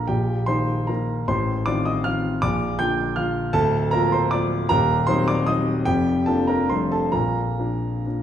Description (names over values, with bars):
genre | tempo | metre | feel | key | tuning
classical, romantic triple-time dance for piano with dotted rhythms | 122-169 BPM | 3/4 | rubato | Bb major | A4 = 440 Hz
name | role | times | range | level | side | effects
warm concert grand piano | solo | 0.0-8.2 s | D1 to G6 | -20 LUFS | equal | none
room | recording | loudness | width
wet recital hall reverb, RT60 1.5 s | heard from further back in the room | -19 LUFS | side -10 dB against mid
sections
0.0-8.2 A section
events
none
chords
0.1 Eb/Bb; 1.3 F7/A; 2.4 Bb; 3.5 Bb/D; 4.7 Cm7b5/Eb; 5.9 Bb/F; 6.7 F69; 7.1 Bb